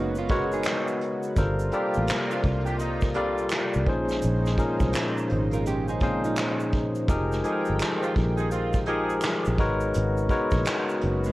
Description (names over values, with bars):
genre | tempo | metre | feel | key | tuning
R&B, neo-soul | 84 BPM | 4/4 | swing 63% on 16ths | unclear | A4 = 440 Hz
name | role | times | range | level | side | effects
hollow-body jazz guitar | second line | 0.0-11.3 s | Ab3 to Bb4 | -32 LUFS | right 4 dB | none
barky tine electric piano | accompaniment | 0.0-11.3 s | Bb2 to D5 | -26 LUFS | left 1 dB | overdrive
chorused pulse-width pad | sustained chords | 0.0-11.3 s | C3 to G5 | -34 LUFS | right 1 dB | none
fingered electric bass | bass | 0.0-11.3 s | F1 to C2 | -28 LUFS | equal | none
tube shaker and finger snaps | percussion | 0.1-11.3 s | none | -43 LUFS | right 4 dB | none
vintage brush drum kit | drums | 0.3-11.2 s | handclaps, hi-hat, kick drum, snare drum | -28 LUFS | equal | none
warm horn section | stabs | 1.7-9.2 s | G3 to Ab4 | -33 LUFS | right 2 dB | none
room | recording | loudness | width
light reverb, small room ambience | worn, warbling old tape, cassette tape, warbly pitch drift | -23 LUFS | side -18 dB against mid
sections
0.0-11.3 A section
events
none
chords
0.0 Abm11; 1.4 Gm11; 3.9 Bbm11; 7.1 Fm11; 9.6 Abm11